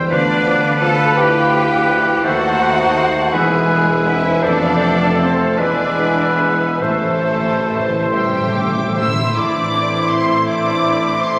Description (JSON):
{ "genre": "classical, slow romantic movement for symphony orchestra", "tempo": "45-57 BPM (dotted quarters)", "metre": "6/8", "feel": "rubato", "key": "A minor", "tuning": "A4 = 442 Hz", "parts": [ { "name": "warm studio violin section", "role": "melody", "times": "0.0-11.4 s", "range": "F5 to E6", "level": "-26 LUFS", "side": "equal", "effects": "none" }, { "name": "clear oboe", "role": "second line", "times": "0.0-11.4 s", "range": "A4 to E5", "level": "-26 LUFS", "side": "equal", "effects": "none" }, { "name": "warm clarinet", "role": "second line", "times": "0.0-11.4 s", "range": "E4 to B#4", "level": "-29 LUFS", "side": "equal", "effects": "none" }, { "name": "mellow bassoon", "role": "accompaniment", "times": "0.0-11.4 s", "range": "F3 to B3", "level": "-31 LUFS", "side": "equal", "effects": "none" }, { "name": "rich studio viola section", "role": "accompaniment", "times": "0.0-11.4 s", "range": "E4 to G5", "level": "-27 LUFS", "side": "equal", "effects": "none" }, { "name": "concert harp", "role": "arpeggios", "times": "0.0-11.4 s", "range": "A2 to B5", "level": "-27 LUFS", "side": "equal", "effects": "none" }, { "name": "mellow trumpet section", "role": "stabs", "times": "0.0-9.0 s", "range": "A4 to C5", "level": "-24 LUFS", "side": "equal", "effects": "none" }, { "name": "dark studio double bass section", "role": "bass", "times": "0.0-11.4 s", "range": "A1 to F2", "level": "-29 LUFS", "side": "equal", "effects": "none" }, { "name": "mellow hollow silver concert flute", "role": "second line", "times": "0.1-11.4 s", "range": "G#4 to C6", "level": "-29 LUFS", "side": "equal", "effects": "none" }, { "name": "rich studio violin section", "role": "second line", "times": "0.1-11.4 s", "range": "G4 to A5", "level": "-29 LUFS", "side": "equal", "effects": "none" }, { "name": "dark trombone section", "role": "sustained chords", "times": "0.1-11.4 s", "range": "D3 to A3", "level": "-28 LUFS", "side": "equal", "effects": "none" }, { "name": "mellow French horn section", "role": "sustained chords", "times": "0.1-11.4 s", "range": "E3 to F4", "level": "-28 LUFS", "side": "equal", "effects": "none" }, { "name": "mellow tuba", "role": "bass", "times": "0.1-9.2 s", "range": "E1 to D#2", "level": "-28 LUFS", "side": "equal", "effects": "none" }, { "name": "rich studio cello section", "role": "bass", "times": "0.1-11.4 s", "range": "G3 to A4", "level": "-25 LUFS", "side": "equal", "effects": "none" }, { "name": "timpani", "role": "percussion", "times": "6.8-9.3 s", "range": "A2", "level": "-27 LUFS", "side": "equal", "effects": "none" } ], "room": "wet concert hall reverb, RT60 1.7 s", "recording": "vinyl crackle", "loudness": "-16 LUFS", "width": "mono", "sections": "0.0-9.4 A section; 9.4-11.4 A section", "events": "timpani fill 6.8-9.4", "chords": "0.1 Bdim/D; 2.2 D#dim7; 3.3 E; 4.4 F; 5.6 E7; 6.8 Am" }